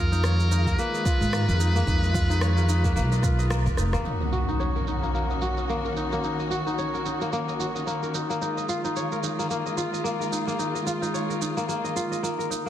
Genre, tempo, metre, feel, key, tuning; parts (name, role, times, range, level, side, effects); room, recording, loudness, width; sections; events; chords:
organic downtempo; 110 BPM; 4/4; swing 57% on 16ths; Eb minor; A4 = 440 Hz
trumpet with metal mute; melody; 0.0-3.5 s; Bb4 to Cb5; -32 LUFS; equal; ping-pong delay
dark studio string section; sustained chords; 0.0-12.7 s; Eb3 to Gb4; -32 LUFS; left 1 dB; sidechain pumping
kora; arpeggios; 0.0-12.7 s; Bb3 to Eb5; -28 LUFS; left 1 dB; low-pass filter, ping-pong delay
upright bass; bass; 0.0-4.0 s; F1 to Ab2; -22 LUFS; equal; sidechain pumping
electronic shaker and rim click; drums; 0.1-12.6 s; -35 LUFS; right 3 dB; low-pass filter on perc, soft clipping on snare, low-pass filter on snare, low-pass filter on room
electronic kick drum; drums; 0.7-3.8 s; -26 LUFS; equal
impact; sound effects; 4.1-6.2 s; -30 LUFS; equal
light reverb; dense, heavily limited modern master; -23 LUFS; side -11 dB against mid
0.0-4.1 A section; 4.1-12.7 B section
band accent 3.5; drum fill 3.8; impact 4.1-6.2; filter sweep on kora 4.1-12.7
0.0 Fm7b5; 4.1 Ebm7; 8.4 Eb9sus4